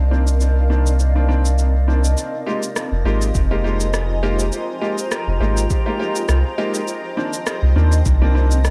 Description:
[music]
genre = ambient dub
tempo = 102 BPM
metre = 4/4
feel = swing 55% on 16ths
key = F dorian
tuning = A4 = 441 Hz
[part]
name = granular cloud pad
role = sustained chords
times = 0.0-8.7 s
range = C4 to Bb5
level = -28 LUFS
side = equal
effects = built-in reverb
[part]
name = soft dub sub bass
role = bass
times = 0.0-8.7 s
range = F1 to Eb2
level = -18 LUFS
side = equal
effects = none
[part]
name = clear upright piano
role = stabs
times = 0.1-8.5 s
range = Eb3 to G4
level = -27 LUFS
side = equal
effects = dub echo
[part]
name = electronic shaker and rim click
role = drums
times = 0.3-8.7 s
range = none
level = -30 LUFS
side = equal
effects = dub echo
[part]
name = electronic kick drum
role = drums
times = 3.4-8.2 s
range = none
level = -22 LUFS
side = equal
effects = none
[sound]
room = light reverb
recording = none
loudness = -19 LUFS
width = mono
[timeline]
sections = 0.0-2.2 A section; 2.2-8.7 B section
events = none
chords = 0.0 Cm11; 2.2 Fm11; 6.9 Cm11

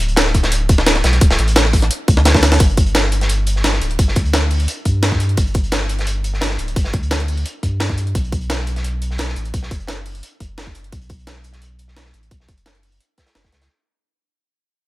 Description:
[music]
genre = liquid drum and bass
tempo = 173 BPM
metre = 4/4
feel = straight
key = B minor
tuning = A4 = 439 Hz
[part]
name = warm sub bass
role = bass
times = 0.0-13.7 s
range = D1 to G2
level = -18 LUFS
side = equal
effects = none
[part]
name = breakbeat sampler-style drum kit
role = drums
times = 0.0-13.7 s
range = hi-hat, snare drum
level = -19 LUFS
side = equal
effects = none
[part]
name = crunchy breakbeat drum kit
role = drums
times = 0.0-13.7 s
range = hi-hat, snare drum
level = -24 LUFS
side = equal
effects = high-pass filter on hats, high-pass filter on snare, high-pass filter on room
[part]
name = electronic kick drum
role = drums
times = 0.3-13.5 s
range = none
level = -16 LUFS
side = equal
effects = overdrive
[sound]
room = small room ambience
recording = none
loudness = -14 LUFS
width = side -18 dB against mid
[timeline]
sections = 0.0-2.6 A section; 2.6-13.7 B section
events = drop 0.0-2.6; drum fill 2.3-2.6; fade-out 2.6-13.7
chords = none

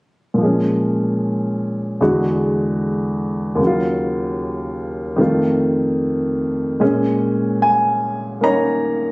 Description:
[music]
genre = solo jazz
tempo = 75 BPM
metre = 4/4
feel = swing 69% on 8ths, rubato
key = Bb minor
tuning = A4 = 440 Hz
[part]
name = warm baby grand piano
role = solo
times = 0.3-9.1 s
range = Eb2 to Bb5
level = -16 LUFS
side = equal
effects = none
[sound]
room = light reverb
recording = recorded on a phone in the room, studio reverb, compression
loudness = -16 LUFS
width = side -26 dB against mid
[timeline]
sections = 0.4-6.8 A section; 6.8-9.1 B section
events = none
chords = 0.4 Bbm7; 2.0 E9; 3.6 Ebm9; 5.2 F7; 6.8 Bbm7

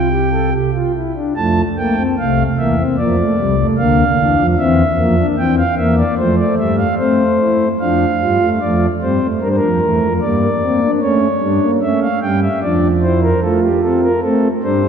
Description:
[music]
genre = classical, baroque-style 3-part fugue for pipe organ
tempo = 75 BPM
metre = 4/4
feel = straight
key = F major, D minor from 7.8 s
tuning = A4 = 440 Hz
[part]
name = pipe organ, principal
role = solo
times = 0.0-14.9 s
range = C2 to A5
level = -13 LUFS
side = equal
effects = none
[sound]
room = wet church reverb, RT60 3.4 s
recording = dark, warm production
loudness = -13 LUFS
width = side -7 dB against mid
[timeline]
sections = 0.0-1.4 A section; 1.4-7.8 B section; 7.8-14.9 C section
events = none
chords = 0.0 C; 1.4 F; 3.0 Gm7 (rootless); 4.6 C7/E; 6.2 F; 7.8 Dm/F; 9.4 Em7b5; 11.0 A7; 12.6 Dm/F; 14.2 Am

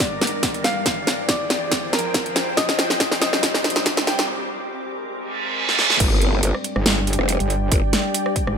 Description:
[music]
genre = heavy wobble dubstep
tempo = 140 BPM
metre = 4/4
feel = swing 54% on 16ths, half-time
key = G phrygian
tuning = A4 = 440 Hz
[part]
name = warm grand piano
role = melody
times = 0.0-4.3 s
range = Bb4 to G5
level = -27 LUFS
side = left 1 dB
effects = ping-pong delay
[part]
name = evolving wavetable pad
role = sustained chords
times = 0.0-8.6 s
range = F2 to G5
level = -29 LUFS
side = left 1 dB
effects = chorus, built-in reverb, sidechain pumping
[part]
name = dubstep drum kit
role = drums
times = 0.0-8.6 s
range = crash cymbal, hi-hat, rim click, snare drum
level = -20 LUFS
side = equal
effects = none
[part]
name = electronic kick drum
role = drums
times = 0.0-8.4 s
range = none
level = -24 LUFS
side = equal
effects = none
[part]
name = riser and reverse cymbal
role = sound effects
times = 0.1-6.0 s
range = none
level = -26 LUFS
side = right 3 dB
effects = none
[part]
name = granular cloud pad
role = texture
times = 0.0-8.6 s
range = C4 to D6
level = -31 LUFS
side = left 1 dB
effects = built-in reverb, sidechain pumping
[part]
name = growl bass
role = bass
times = 6.0-7.8 s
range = F1 to G1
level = -19 LUFS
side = equal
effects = chorus, overdrive
[part]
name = metallic wobble bass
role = bass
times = 6.8-8.6 s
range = G1 to Ab1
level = -21 LUFS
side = equal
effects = chorus, overdrive
[sound]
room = light reverb, digital ambience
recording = high-pass filter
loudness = -18 LUFS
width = side -6 dB against mid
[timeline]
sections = 0.0-6.0 A section; 6.0-8.6 B section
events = build-up 0.0-6.0; drum fill 0.0-4.3, 5.7-6.0; riser 0.1-4.3; filter sweep 0.0-6.0; break 4.3-6.0; reverse cymbal 5.3-6.0; drop 6.0-8.6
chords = 0.0 Gm; 0.9 Fm; 2.6 Cm; 4.3 Abadd9; 6.0 G5

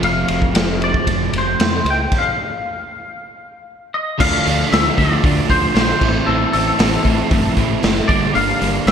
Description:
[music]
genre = indie rock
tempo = 116 BPM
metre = 4/4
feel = straight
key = unclear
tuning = A4 = 440 Hz
[part]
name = twangy electric guitar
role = melody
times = 0.0-8.9 s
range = A4 to G5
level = -20 LUFS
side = left 2 dB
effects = ensemble chorus
[part]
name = electric guitar at the edge of break-up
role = riff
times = 0.0-8.9 s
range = F2 to E4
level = -23 LUFS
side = left 8 dB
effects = lush chorus
[part]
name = overdriven semi-hollow guitar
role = riff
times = 0.0-8.9 s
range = F2 to F4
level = -21 LUFS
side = right 10 dB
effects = lush chorus
[part]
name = fingered electric bass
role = bass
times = 0.0-8.9 s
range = F1 to F2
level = -23 LUFS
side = equal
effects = none
[part]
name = raw garage drum kit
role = drums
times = 0.0-8.9 s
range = crash cymbal, hi-hat, kick drum, ride cymbal, snare drum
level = -18 LUFS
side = equal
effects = gated reverb
[sound]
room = light reverb, small room ambience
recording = bright 1980s-style digital production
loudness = -14 LUFS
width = side -8 dB against mid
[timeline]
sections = 0.0-4.2 A section; 4.2-8.9 B section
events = stop 2.1-4.2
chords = 0.0 F; 4.2 Dm; 6.0 Am; 8.1 Gm

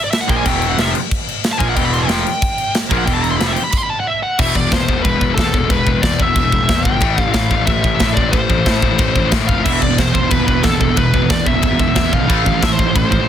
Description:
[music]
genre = heavy metal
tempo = 183 BPM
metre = 4/4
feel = straight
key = unclear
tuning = A4 = 439 Hz
[part]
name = high-gain lead guitar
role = melody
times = 0.0-13.3 s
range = A4 to C6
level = -20 LUFS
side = right 1 dB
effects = distortion
[part]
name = tight metal drum kit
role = drums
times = 0.1-13.2 s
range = china cymbal, crash cymbal, kick drum, snare drum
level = -18 LUFS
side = equal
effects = none
[part]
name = distorted electric guitar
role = riff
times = 0.3-3.6, 9.6-13.3 s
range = E2 to A#3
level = -20 LUFS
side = right 13 dB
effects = distortion
[part]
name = scooped high-gain guitar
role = riff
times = 0.3-13.3 s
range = E2 to A#3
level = -19 LUFS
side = left 10 dB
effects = distortion
[part]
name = fuzz picked electric bass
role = bass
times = 0.3-13.3 s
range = E1 to A2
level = -20 LUFS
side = equal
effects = overdrive
[sound]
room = light reverb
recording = dense, heavily limited modern master, faint mains hum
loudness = -13 LUFS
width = side -10 dB against mid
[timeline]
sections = 0.0-4.4 A section; 4.4-13.3 B section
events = lead electric guitar solo 0.0-4.4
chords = 0.0 Em; 4.1 N.C.; 4.4 E5; 7.0 Am; 9.7 E5; 12.3 Am

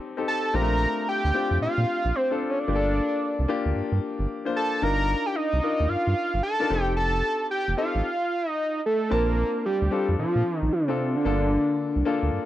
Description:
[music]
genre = R&B, new jack swing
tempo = 112 BPM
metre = 4/4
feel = swing 63% on 16ths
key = unclear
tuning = A4 = 439 Hz
[part]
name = clear baby grand piano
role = accompaniment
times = 0.0-12.5 s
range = A3 to A5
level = -29 LUFS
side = left 4 dB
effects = none
[part]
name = fat analog lead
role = melody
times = 0.3-12.2 s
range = C4 to Bb5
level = -25 LUFS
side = right 1 dB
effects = tape echo
[part]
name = round analog bass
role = bass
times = 0.5-12.4 s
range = F1 to Bb2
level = -25 LUFS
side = right 1 dB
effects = none
[sound]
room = light reverb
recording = dry, close 1970s-style studio recording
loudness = -22 LUFS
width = side -13 dB against mid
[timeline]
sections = 0.0-9.1 A section; 9.1-12.5 A section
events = none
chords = 0.0 F7 (rootless); 0.5 Bbmaj9; 2.7 Gm9; 4.8 Cm11/G (rootless); 6.7 F7; 8.0 N.C.; 9.1 Bbmaj9; 11.3 Gm9

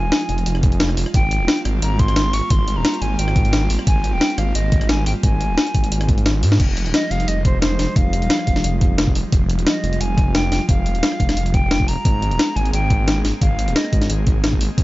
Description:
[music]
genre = liquid drum and bass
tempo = 176 BPM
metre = 4/4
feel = straight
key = unclear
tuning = A4 = 440 Hz
[part]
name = hollow concert flute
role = melody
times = 0.0-14.1 s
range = C5 to Db6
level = -26 LUFS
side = left 1 dB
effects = dub echo
[part]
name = airy breathy pad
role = sustained chords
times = 0.0-14.8 s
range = F3 to Ab4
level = -29 LUFS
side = right 1 dB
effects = chorus, sidechain pumping
[part]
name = swelling detuned saw bass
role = bass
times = 0.0-14.8 s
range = Eb1 to Ab2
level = -20 LUFS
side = equal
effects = tube saturation
[part]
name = breakbeat sampler-style drum kit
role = drums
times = 0.1-14.8 s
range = crash cymbal, hi-hat, rim click, snare drum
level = -21 LUFS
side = left 1 dB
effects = none
[part]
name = electronic kick drum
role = drums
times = 0.6-14.8 s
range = none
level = -17 LUFS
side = equal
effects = none
[sound]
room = little or no reverb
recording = nothing above 7.5 kHz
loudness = -16 LUFS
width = side -18 dB against mid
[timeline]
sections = 0.0-6.6 A section; 6.6-14.8 A section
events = drop 0.0-6.6, 6.6-14.8; drum fill 6.3-6.6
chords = 0.0 Fm7; 1.1 Abmaj9; 6.6 Fm9; 12.1 Abadd9

